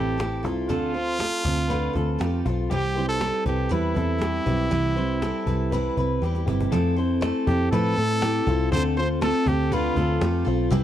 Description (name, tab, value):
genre	jangly indie pop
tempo	120 BPM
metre	4/4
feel	straight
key	unclear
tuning	A4 = 439 Hz
part	brilliant trumpet	melody	0.0-10.5 s	E4 to C5	-27 LUFS	right 1 dB	none
part	picked steel-string acoustic guitar	accompaniment	0.0-10.8 s	C3 to B4	-28 LUFS	right 5 dB	none
part	electric guitar through a small old amp	arpeggios	0.0-10.8 s	F4 to C5	-30 LUFS	left 4 dB	spring reverb
part	vintage muted picked electric bass	bass	0.0-10.8 s	G1 to A2	-26 LUFS	left 1 dB	none
part	cajon	drums	0.2-10.8 s	none	-31 LUFS	left 1 dB	none
part	vibraphone with soft mallets	second line	6.7-10.8 s	C4 to E4	-29 LUFS	left 8 dB	none
room	little or no reverb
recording	dry, close 1970s-style studio recording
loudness	-21 LUFS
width	side -11 dB against mid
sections	0.0-6.7 A section; 6.7-10.8 B section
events	drum fill 6.2-6.7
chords	0.0 Fmaj7; 0.7 Dm7; 2.7 Cmaj7; 6.7 Fmaj7; 8.7 Dm7